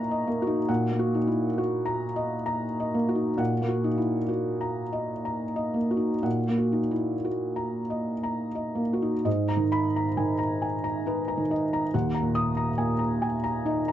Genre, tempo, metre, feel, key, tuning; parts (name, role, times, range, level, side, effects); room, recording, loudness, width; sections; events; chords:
neoclassical minimalist piano; 58-70 BPM; 3/4; rubato; A4 = 440 Hz
felt-muted upright piano; solo; 0.0-13.9 s; D#2 to D#6; -24 LUFS; equal
light reverb; dark, warm production, nothing above 10.3 kHz; -24 LUFS; side -11 dB against mid
0.0-9.3 A section; 9.3-13.9 B section
0.0 D#m/A#; 9.3 G#madd9; 11.9 D#m